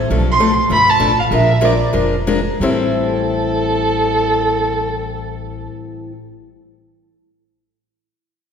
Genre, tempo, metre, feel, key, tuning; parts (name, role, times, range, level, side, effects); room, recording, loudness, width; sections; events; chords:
acoustic string swing (jazz manouche); 174-205 BPM; 4/4; swing 57% on 8ths; A minor; A4 = 441 Hz
upright bass; bass; 0.0-5.7 s; F1 to B1; -21 LUFS; equal
picked steel-string acoustic guitar; accompaniment; 0.1-6.1 s; A2 to Bb4; -19 LUFS; left 3 dB
dark violin; melody; 0.3-5.7 s; A4 to C6; -16 LUFS; right 2 dB
wet scoring stage reverb, RT60 2.0 s; recorded in a church or concert hall; -13 LUFS; side -7 dB against mid
0.1-2.6 A section; 2.6-5.4 B section
slowing down 0.1-2.6
0.1 Bm7b5; 1.3 Bb7; 2.6 Am7